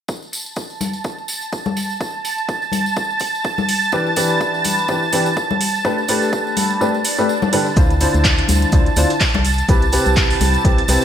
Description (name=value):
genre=piano house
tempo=125 BPM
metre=4/4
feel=swing 57% on 16ths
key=D dorian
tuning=A4 = 439 Hz
part: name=analog string pad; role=sustained chords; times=0.8-11.0 s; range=A5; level=-21 LUFS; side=right 3 dB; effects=ensemble chorus, sidechain pumping
part: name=electronic kick drum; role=drums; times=0.1-10.8 s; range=none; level=-19 LUFS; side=equal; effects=high-pass filter on kick, studio reverb, high-pass filter on room
part: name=tambourine and congas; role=percussion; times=0.1-11.0 s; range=none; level=-25 LUFS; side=left 3 dB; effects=none
part: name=house drum kit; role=drums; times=0.3-11.0 s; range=handclaps, hi-hat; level=-23 LUFS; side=right 2 dB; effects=low-pass filter on hats, studio reverb, low-pass filter on snare
part: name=warm upright piano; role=riff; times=3.9-11.0 s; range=C3 to C5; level=-19 LUFS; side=left 1 dB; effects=lush chorus, sidechain pumping, ping-pong delay
part: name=swell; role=sound effects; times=7.0-7.8 s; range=none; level=-27 LUFS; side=left 3 dB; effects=none
part: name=organ-like FM bass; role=bass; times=7.8-11.0 s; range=C2 to D2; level=-18 LUFS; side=equal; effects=tube saturation, sidechain pumping
part: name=dusty soul sampler-style drum kit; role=drums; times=7.8-11.0 s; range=hi-hat, shaker, snare drum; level=-31 LUFS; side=equal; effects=none
room=light reverb, digital ambience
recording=bright 1980s-style digital production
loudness=-15 LUFS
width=side -9 dB against mid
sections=0.1-7.8 A section; 7.8-11.0 B section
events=kick drops out 6.8-7.8; swell 7.0-7.8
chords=0.1 N.C.; 3.9 Em7; 5.8 A9sus4; 7.8 Dm9; 9.4 Cmaj7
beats=| 0.09 0.57 1.05 1.53 | 2.01 2.49 2.97 3.45 | 3.93 4.41 4.89 5.37 | 5.85 6.33 6.81 7.29 | 7.77 8.25 8.73 9.21 | 9.69 10.17 10.65